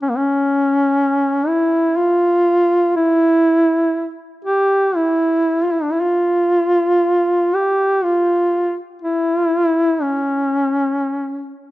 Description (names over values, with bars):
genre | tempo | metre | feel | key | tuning
caucasian folk, Caucasian lament | 61 BPM | 3/4 | rubato | unclear | A4 = 441 Hz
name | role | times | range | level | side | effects
warm duduk | solo | 0.0-11.5 s | Bb3 to G4 | -14 LUFS | equal | cassette tape
room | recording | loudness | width
light reverb, studio reverb | home recording on cassette | -14 LUFS | side -16 dB against mid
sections
0.0-11.7 A section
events
none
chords
none